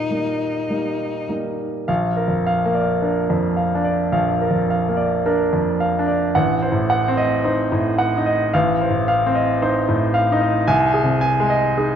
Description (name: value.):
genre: classical, romantic duo for cello and grand piano.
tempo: 50-57 BPM.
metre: 4/4.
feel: rubato.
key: Bb major.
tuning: A4 = 440 Hz.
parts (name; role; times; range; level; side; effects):
rich cello; melody; 0.0-1.3 s; Eb4; -24 LUFS; left 3 dB; none.
clear baby grand piano; accompaniment; 0.0-12.0 s; A1 to Ab5; -17 LUFS; equal; none.
room: moderate scoring stage reverb, RT60 1.5 s.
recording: dark, warm production.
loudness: -17 LUFS.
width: side -8 dB against mid.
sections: 0.0-1.9 A section; 1.9-12.0 B section.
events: none.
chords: 0.0 Eb; 1.9 Bb; 6.4 Adim7; 8.5 F7/A; 10.7 Ab/C.